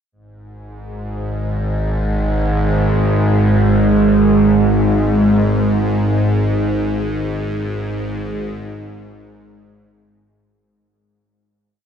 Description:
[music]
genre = ambient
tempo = free time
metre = none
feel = none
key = unclear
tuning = A4 = 440 Hz
[part]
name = bowed-like drone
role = solo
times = 1.0-10.7 s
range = G#1 to G#2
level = -14 LUFS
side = equal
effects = built-in reverb, phaser
[sound]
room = wet huge ambient reverb, RT60 8.2 s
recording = dark, warm production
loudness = -14 LUFS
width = side -8 dB against mid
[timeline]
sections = 0.1-10.6 A section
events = fade-out 5.4-10.6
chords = none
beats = free time

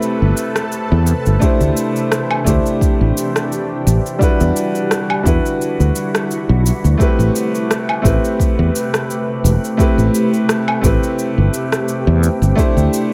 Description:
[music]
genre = sunset chillout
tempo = 86 BPM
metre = 4/4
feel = swing 54% on 16ths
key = A dorian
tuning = A4 = 440 Hz
[part]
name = warm concert grand piano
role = accompaniment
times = 0.0-13.1 s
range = G3 to C5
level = -21 LUFS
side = equal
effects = digital delay
[part]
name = shimmering ambient pad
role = sustained chords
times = 0.0-13.1 s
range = C3 to B4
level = -25 LUFS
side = equal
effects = chorus, built-in reverb
[part]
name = electronic cabasa, rim click and woodblock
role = drums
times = 0.0-13.1 s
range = none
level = -24 LUFS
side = equal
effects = overdrive
[part]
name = fretless electric bass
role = bass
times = 0.2-12.9 s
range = E1 to E2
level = -16 LUFS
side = equal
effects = none
[part]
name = electronic kick drum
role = drums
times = 1.4-12.7 s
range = none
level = -19 LUFS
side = equal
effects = overdrive
[sound]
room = light reverb, digital ambience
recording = none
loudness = -16 LUFS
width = mono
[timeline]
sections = 0.0-13.1 A section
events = none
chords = 0.0 Am9; 1.4 D9sus4; 4.2 Em9; 7.0 Am9; 12.6 D9sus4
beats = 0.02 0.72 | 1.42 2.12 2.81 3.51 | 4.21 4.91 5.60 6.30 | 7.00 7.70 8.39 9.09 | 9.79 10.49 11.19 11.88 | 12.58

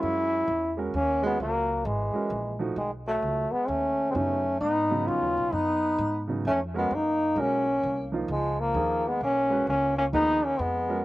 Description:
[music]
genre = jazz, small-group swing and bop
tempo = 130 BPM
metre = 3/4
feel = swing 65% on 8ths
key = F# major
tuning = A4 = 439 Hz
[part]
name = bright trombone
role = melody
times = 0.0-11.0 s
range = G#3 to E#4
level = -25 LUFS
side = left 1 dB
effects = none
[part]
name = mellow tenor saxophone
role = second line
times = 0.0-11.0 s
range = D#3 to C#4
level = -35 LUFS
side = right 2 dB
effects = slapback echo
[part]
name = warm baby grand piano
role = accompaniment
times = 0.0-11.0 s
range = C#3 to C#5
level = -32 LUFS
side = right 3 dB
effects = none
[part]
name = upright bass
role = bass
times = 0.0-11.0 s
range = G#1 to G#2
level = -34 LUFS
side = equal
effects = none
[sound]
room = little or no reverb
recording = recorded outdoors, with no room sound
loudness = -24 LUFS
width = side -17 dB against mid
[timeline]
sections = 0.0-11.0 A section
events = none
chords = 0.0 F#13; 2.8 B13; 6.9 F#69; 8.3 C#13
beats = | 0.01 0.47 0.93 | 1.39 1.85 2.31 | 2.77 3.23 3.69 | 4.15 4.61 5.07 | 5.53 5.99 6.45 | 6.91 7.37 7.83 | 8.29 8.76 9.21 | 9.68 10.14 10.60

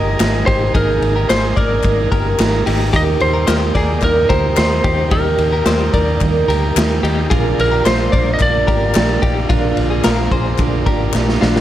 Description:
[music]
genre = jangly indie pop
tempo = 110 BPM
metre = 4/4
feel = straight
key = Eb major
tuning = A4 = 441 Hz
[part]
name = lightly driven lead guitar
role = melody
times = 0.0-11.1 s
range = Ab4 to Eb5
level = -19 LUFS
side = equal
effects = slapback echo, plate reverb
[part]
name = fingerpicked steel-string acoustic guitar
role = accompaniment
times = 0.0-11.6 s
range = Bb2 to Bb4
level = -23 LUFS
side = right 9 dB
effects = plate reverb
[part]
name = overdriven combo organ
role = accompaniment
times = 0.0-11.6 s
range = D4 to Bb5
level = -26 LUFS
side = right 12 dB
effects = spring reverb, plate reverb
[part]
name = direct-recorded clean electric guitar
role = arpeggios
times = 0.0-11.6 s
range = D4 to D5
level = -22 LUFS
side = left 4 dB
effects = tremolo, plate reverb
[part]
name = vintage muted fingered electric bass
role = bass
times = 0.0-11.6 s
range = G1 to Eb2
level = -19 LUFS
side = equal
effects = none
[part]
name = raw garage drum kit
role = drums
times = 0.2-11.6 s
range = hi-hat, kick drum, ride cymbal, snare drum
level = -18 LUFS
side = equal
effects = none
[part]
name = group handclap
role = percussion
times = 0.2-11.3 s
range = none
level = -25 LUFS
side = left 17 dB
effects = none
[sound]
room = light reverb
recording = none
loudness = -13 LUFS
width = side -12 dB against mid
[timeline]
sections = 0.0-11.6 A section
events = transistor combo organ fill 2.1-2.9; drum fill 11.1-11.6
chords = 0.0 Absus2; 2.9 Eb; 7.3 Bb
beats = 0.20 | 0.75 1.29 1.84 2.39 | 2.93 3.48 4.03 4.58 | 5.12 5.67 6.21 6.76 | 7.31 7.86 8.40 8.95 | 9.50 10.04 10.59 11.14

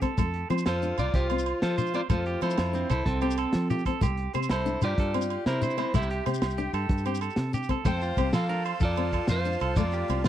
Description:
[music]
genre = highlife guitar band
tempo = 125 BPM (dotted quarters)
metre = 12/8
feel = straight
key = F major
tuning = A4 = 440 Hz
[part]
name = fingerpicked steel-string acoustic guitar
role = accompaniment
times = 0.0-10.3 s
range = A3 to F4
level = -34 LUFS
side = left 7 dB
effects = none
[part]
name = clean electric guitar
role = arpeggios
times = 0.0-10.3 s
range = C4 to C5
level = -35 LUFS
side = right 7 dB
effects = tape echo
[part]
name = fingered electric bass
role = bass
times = 0.0-10.3 s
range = C2 to F3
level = -30 LUFS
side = equal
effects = none
[part]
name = crunchy breakbeat drum kit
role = drums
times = 0.0-10.3 s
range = hi-hat, kick drum, snare drum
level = -29 LUFS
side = equal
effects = none
[part]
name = agogo bells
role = percussion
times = 0.0-10.3 s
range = none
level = -37 LUFS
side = right 20 dB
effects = none
[part]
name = shekere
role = percussion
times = 0.0-10.3 s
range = none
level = -31 LUFS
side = left 3 dB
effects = none
[part]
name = electric guitar at the edge of break-up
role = melody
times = 0.7-10.3 s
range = C4 to G5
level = -31 LUFS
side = equal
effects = spring reverb
[part]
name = bright soprano saxophone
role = second line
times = 0.7-10.2 s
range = C4 to C5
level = -39 LUFS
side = left 13 dB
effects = none
[part]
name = musette accordion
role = sustained chords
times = 7.8-10.3 s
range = F5 to C6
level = -42 LUFS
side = right 3 dB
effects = none
[sound]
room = small room ambience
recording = dry, close 1970s-style studio recording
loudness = -25 LUFS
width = side -11 dB against mid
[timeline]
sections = 0.0-7.9 A section; 7.9-10.3 B section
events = none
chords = 0.2 F; 4.0 C; 7.9 F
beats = | 0.17 0.66 1.14 1.62 | 2.10 2.58 3.06 3.54 | 4.02 4.50 4.98 5.46 | 5.94 6.42 6.90 7.38 | 7.86 8.34 8.82 9.30 | 9.78 10.26

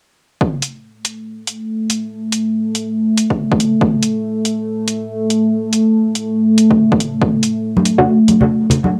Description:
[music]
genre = deep dubstep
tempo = 141 BPM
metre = 4/4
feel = swing 60% on 16ths, half-time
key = unclear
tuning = A4 = 440 Hz
[part]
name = deep dark ambient pad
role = sustained chords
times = 1.2-9.0 s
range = A3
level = -17 LUFS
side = equal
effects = chorus, built-in reverb, vintage 12-bit sampler grit, cassette tape
[part]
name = electronic kick drum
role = drums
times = 0.4-0.5, 3.3-3.9, 6.7-7.3 s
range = none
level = -19 LUFS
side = equal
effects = overdrive, high-pass filter on kick, cassette tape
[part]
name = electronic hi-hat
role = drums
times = 0.6-8.8 s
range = none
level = -21 LUFS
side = equal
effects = overdrive, cassette tape
[part]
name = congas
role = percussion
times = 7.8-8.9 s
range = none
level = -18 LUFS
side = equal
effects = none
[part]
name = filtered dub chord stab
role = stabs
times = 8.0-8.2 s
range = A3 to F#4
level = -19 LUFS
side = equal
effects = phaser, cassette tape, dub echo
[sound]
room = wet studio ambience, RT60 0.5 s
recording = home recording on cassette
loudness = -16 LUFS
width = mono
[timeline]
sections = 0.4-9.0 A section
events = none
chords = 0.4 N.C.; 7.2 D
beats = | 0.41 0.83 1.26 1.69 | 2.11 2.54 2.96 3.39 | 3.81 4.24 4.66 5.09 | 5.51 5.94 6.37 6.79 | 7.22 7.64 8.07 8.49 | 8.92

